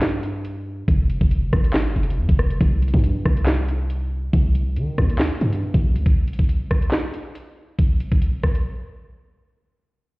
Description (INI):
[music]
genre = hip hop, drill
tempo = 139 BPM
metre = 4/4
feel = half-time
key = C harmonic minor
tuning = A4 = 440 Hz
[part]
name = hard-hitting 808-style bass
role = bass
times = 0.0-6.1 s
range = F1 to Eb3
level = -21 LUFS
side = equal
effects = none
[part]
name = drill drum kit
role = drums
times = 0.0-8.6 s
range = handclaps, hi-hat, kick drum, rim click, snare drum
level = -19 LUFS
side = equal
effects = none
[sound]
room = digital ambience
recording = heard muffled through a wall, stone room reverb, EQ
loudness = -18 LUFS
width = side -23 dB against mid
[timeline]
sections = 0.0-9.5 A section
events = break 8.7-9.5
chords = none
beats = 0.02 0.45 | 0.88 1.31 1.74 2.17 | 2.61 3.04 3.47 3.90 | 4.33 4.76 5.20 5.63 | 6.06 6.49 6.92 7.36 | 7.79 8.22